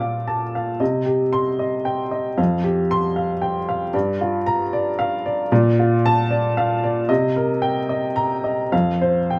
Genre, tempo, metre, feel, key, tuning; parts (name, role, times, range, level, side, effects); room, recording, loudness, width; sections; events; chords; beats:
neoclassical minimalist piano; 114 BPM; 3/4; rubato; C dorian; A4 = 440 Hz
clear upright piano; solo; 0.0-9.4 s; F2 to D6; -21 LUFS; equal
moderate studio ambience, RT60 0.5 s; band playing live in one room, faint mains hum; -21 LUFS; mono
0.0-9.4 A section
0.0 Bbmaj7; 0.8 Cm; 2.4 Fsus2; 3.9 Gm7; 5.5 Bbmaj7; 7.1 Cm7; 8.7 Fsus2
0.27 | 0.80 1.33 1.85 | 2.38 2.90 3.42 | 3.93 4.46 4.97 | 5.50 6.04 6.56 | 7.09 7.61 8.15 | 8.72 9.30